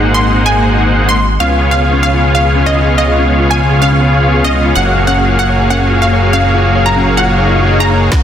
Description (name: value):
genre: future bass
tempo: 143 BPM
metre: 4/4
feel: half-time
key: unclear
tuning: A4 = 439 Hz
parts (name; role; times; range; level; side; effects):
- airy breathy pad; sustained chords; 0.1-8.2 s; Db3 to F5; -22 LUFS; left 3 dB; chorus, phaser, sidechain pumping
- dense compressed supersaw; riff; 0.0-8.2 s; Bb3 to Gb5; -13 LUFS; equal; cassette tape, sidechain pumping, low-pass filter
- fat analog bass; bass; 0.0-8.2 s; Eb1 to Db2; -13 LUFS; equal; sidechain pumping, high-pass filter
- wide unison pluck; melody; 0.1-8.2 s; Eb5 to C6; -16 LUFS; right 1 dB; sidechain pumping, dub echo
- thumb-piano-like synth pluck; arpeggios; 1.4-8.2 s; Db4 to Ab5; -20 LUFS; left 2 dB; chorus, sidechain pumping, dub echo
- swell and riser; sound effects; 7.4-8.2 s; none; -20 LUFS; left 5 dB; none
- electronic kick drum; drums; 8.1-8.2 s; none; -10 LUFS; equal; none
- trap drum kit; drums; 8.1-8.2 s; hi-hat, snare drum; -17 LUFS; equal; none
room: moderate lush hall reverb, RT60 2.1 s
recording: dense, heavily limited modern master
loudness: -9 LUFS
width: side -9 dB against mid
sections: 0.0-8.1 A section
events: swell 7.4-8.1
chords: 0.0 Ab9; 1.4 Db7; 4.8 Gbmaj9